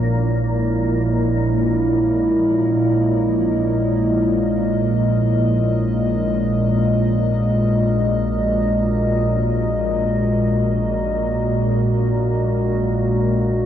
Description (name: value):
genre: dark ambient drone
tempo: free time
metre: none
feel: none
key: unclear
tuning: A4 = 439 Hz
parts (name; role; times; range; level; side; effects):
- dark analog pad; sustained chords; 0.0-13.7 s; Bb2 to Eb5; -19 LUFS; equal; chorus
- organ-like drone; drone; 0.0-13.7 s; Bb1 to Bb2; -20 LUFS; equal; ensemble chorus, built-in reverb
room: wet huge ambient reverb, RT60 7.5 s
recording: dark, warm production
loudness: -16 LUFS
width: side -10 dB against mid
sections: 0.0-13.7 A section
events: none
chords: 0.0 Dbmadd9/Bb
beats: free time